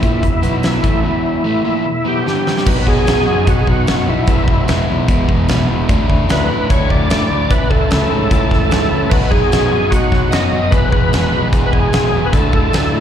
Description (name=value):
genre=classic rock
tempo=149 BPM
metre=4/4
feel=straight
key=E mixolydian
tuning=A4 = 438 Hz
part: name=overdriven tonewheel organ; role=melody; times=0.0-13.0 s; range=E4 to D#5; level=-19 LUFS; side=right 1 dB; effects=chorus vibrato, slow rotary speaker, plate reverb, slapback echo, tape echo
part: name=crunchy overdriven guitar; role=riff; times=0.0-13.0 s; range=E2 to G#4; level=-18 LUFS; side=equal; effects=none
part: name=fuzz fingered electric bass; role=bass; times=0.0-13.0 s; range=E1 to A2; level=-19 LUFS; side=equal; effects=overdrive
part: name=huge arena drum kit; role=drums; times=0.0-12.8 s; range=crash cymbal, hi-hat, kick drum, snare drum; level=-16 LUFS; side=equal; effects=none
room=light reverb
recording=live gig heard through the venue's PA, recital hall reverb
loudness=-12 LUFS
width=side -9 dB against mid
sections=0.0-2.7 A section; 2.7-13.0 B section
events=drum fill 2.3-2.7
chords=0.4 B5; 0.8 E5; 2.3 G5; 2.7 B; 4.3 E; 5.9 Dsus2; 7.5 A/C#; 9.1 B; 10.7 E; 12.3 Dsus2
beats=0.24 0.65 | 1.05 1.46 1.86 2.26 | 2.67 3.07 3.48 3.88 | 4.28 4.68 5.09 5.49 | 5.89 6.30 6.70 7.10 | 7.50 7.91 8.31 8.71 | 9.12 9.52 9.92 10.32 | 10.72 11.13 11.53 11.93 | 12.33 12.74